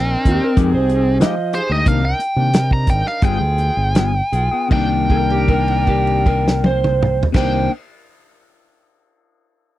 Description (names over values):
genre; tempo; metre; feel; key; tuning
straight-eighth soul blues; 78-96 BPM; 4/4; straight; C minor; A4 = 440 Hz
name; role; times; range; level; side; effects
biting lead guitar; melody; 0.0-7.7 s; C4 to Bb5; -20 LUFS; equal; overdrive
warm horn section; sustained chords; 0.0-7.7 s; B3 to Bb4; -29 LUFS; right 2 dB; none
fingered electric bass; bass; 0.0-7.7 s; G1 to F3; -19 LUFS; equal; none
electric slide guitar; second line; 0.3-7.7 s; G4 to Eb5; -22 LUFS; right 3 dB; none
warm soul drum kit; drums; 0.3-7.5 s; crash cymbal, hi-hat, kick drum, snare drum, toms; -18 LUFS; equal; none
clean electric guitar; stabs; 0.4-7.7 s; C3 to Ab4; -23 LUFS; left 8 dB; none
room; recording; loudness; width
little or no reverb; dry, close 1970s-style studio recording; -14 LUFS; side -15 dB against mid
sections
0.0-4.7 A section; 4.7-7.8 B section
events
slowing down 0.0-4.7; held note 4.7-7.3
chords
0.0 Cm9; 0.6 Fm9; 1.9 Cm9; 3.2 G7b9; 4.7 Cm9